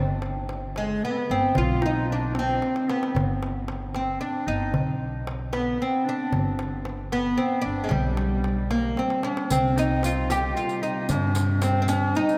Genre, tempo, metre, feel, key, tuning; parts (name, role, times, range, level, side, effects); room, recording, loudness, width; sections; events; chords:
Arabic maqam ensemble; 76 BPM (dotted quarters); 6/8; straight; G maqam hijaz; A4 = 440 Hz
upright bass; bass; 0.0-12.1 s; G1 to G2; -30 LUFS; equal
darbuka; percussion; 0.2-12.2 s; -34 LUFS; equal
oud; melody; 0.8-12.4 s; G3 to G4; -28 LUFS; equal
bright clarinet; second line; 0.8-12.4 s; F3 to G4; -33 LUFS; equal
dark cello; drone; 9.5-12.4 s; C2; -36 LUFS; equal
riq; percussion; 9.5-12.4 s; -39 LUFS; equal
wet cathedral reverb, RT60 4.8 s; in a vast, echoing space; -25 LUFS; mono
0.0-9.5 A section; 9.5-12.4 B section
drum fill 2.6-3.1, 9.0-9.5